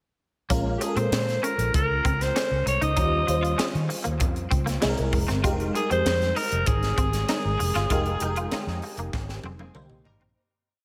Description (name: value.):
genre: polished 1980s jazz-funk pop.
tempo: 97 BPM.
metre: 4/4.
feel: straight.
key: F minor.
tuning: A4 = 439 Hz.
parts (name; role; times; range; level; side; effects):
FM electric piano; accompaniment; 0.5-10.4 s; G3 to G5; -33 LUFS; equal; phaser, ensemble chorus.
semi-hollow electric guitar; riff; 0.5-10.3 s; G3 to F4; -36 LUFS; equal; ensemble chorus.
vintage muted fingered electric bass; bass; 0.5-10.3 s; F1 to Eb3; -30 LUFS; equal; none.
crisp fusion drum kit; drums; 0.5-10.4 s; hi-hat, kick drum, snare drum, toms; -31 LUFS; equal; none.
growling alto saxophone; melody; 0.8-9.7 s; G4 to Eb5; -29 LUFS; equal; none.
warm horn section; second line; 9.6-10.2 s; Eb3 to Bb4; -63 LUFS; equal; none.
room: moderate lush hall reverb, RT60 2.2 s.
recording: big arena sound.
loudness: -25 LUFS.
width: mono.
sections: 0.5-10.4 verse.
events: fade-out 7.9-10.4; band accent 7.9-10.4; drum fill 9.1-10.4.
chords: 0.5 Bbm7; 3.0 Eb13; 4.8 C7b13; 5.4 Fm11; 9.7 Cm7.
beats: | 0.51 1.12 1.74 2.35 | 2.97 3.59 4.20 4.82 | 5.44 6.05 6.67 7.28 | 7.90 8.52 9.13 9.75.